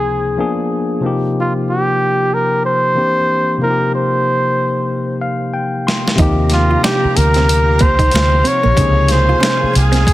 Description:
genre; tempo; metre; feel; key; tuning
R&B, neo-soul; 93 BPM; 4/4; swing 60% on 16ths; Eb major; A4 = 440 Hz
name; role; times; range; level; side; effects
warm flugelhorn; melody; 0.0-10.1 s; F4 to Db5; -16 LUFS; equal; none
barky tine electric piano; accompaniment; 0.0-10.1 s; Db2 to C6; -18 LUFS; left 2 dB; none
boom bap sampler-style drum kit; drums; 5.9-10.1 s; finger snaps, hi-hat, kick drum, snare drum; -17 LUFS; equal; none
hollow-body jazz guitar; second line; 6.2-10.1 s; Bb3 to F4; -24 LUFS; right 5 dB; none
string machine, full ensemble; sustained chords; 6.2-10.1 s; G4 to Bb5; -26 LUFS; right 1 dB; ensemble chorus
vintage muted fingered electric bass; bass; 6.2-10.1 s; Bb1 to Eb2; -14 LUFS; equal; none
room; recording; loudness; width
light reverb; dense, heavily limited modern master; -12 LUFS; side -15 dB against mid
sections
0.0-6.2 A section; 6.2-10.1 B section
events
tine electric piano fill 4.9-6.2; drum fill 5.5-6.2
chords
0.4 Bb7b9; 1.0 Ebadd9; 3.0 C7; 3.6 Fsus2; 6.2 Ebmaj9; 8.8 Dbmaj7

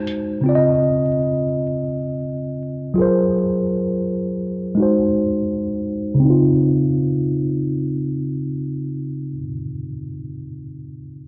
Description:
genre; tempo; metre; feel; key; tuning
hip hop; free time; none; none; Db major; A4 = 440 Hz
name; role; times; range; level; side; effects
mellow tine electric piano; accompaniment; 0.0-11.3 s; Db3 to Eb5; -21 LUFS; equal; cassette tape, low-pass filter
room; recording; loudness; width
moderate plate reverb, RT60 1.9 s; vinyl crackle, low-pass filter; -20 LUFS; mono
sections
0.0-6.2 A section; 6.2-9.1 B section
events
filter sweep 0.0-6.2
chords
0.4 Dbmaj9; 3.0 Gbmaj9#11; 4.8 Ab7; 6.2 Dbmaj9

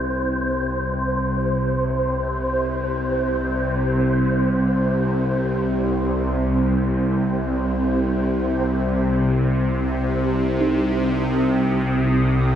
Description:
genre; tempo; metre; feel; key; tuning
dark ambient drone; free time; none; none; C minor; A4 = 438 Hz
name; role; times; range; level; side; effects
bowed-like drone; drone; 0.0-12.6 s; C2 to C3; -19 LUFS; equal; built-in reverb, phaser
wind-like tuned noise texture; texture; 0.0-12.6 s; C5 to Eb6; -27 LUFS; equal; built-in reverb, ensemble chorus
dark detuned synth bell; arpeggios; 10.6-12.6 s; Eb4; -28 LUFS; right 3 dB; none
room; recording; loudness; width
wet lush hall reverb, RT60 2.7 s; dreamy mix soaked in reverb; -19 LUFS; side -10 dB against mid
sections
0.0-12.6 A section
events
none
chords
0.0 N.C.; 10.6 Cm

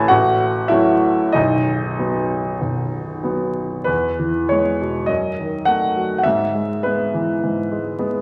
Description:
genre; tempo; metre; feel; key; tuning
classical, romantic character piece for solo piano; 91-108 BPM; 4/4; rubato; E major; A4 = 443 Hz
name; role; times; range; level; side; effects
warm grand piano; solo; 0.0-8.2 s; B0 to B5; -19 LUFS; equal; none
room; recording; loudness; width
wet large studio reverb, RT60 1.5 s; vinyl crackle; -19 LUFS; mono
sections
0.0-3.9 A section; 3.9-8.2 B section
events
none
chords
0.1 F#m/A; 1.3 B; 3.9 E; 5.1 D#dim/F#; 6.2 E/G#

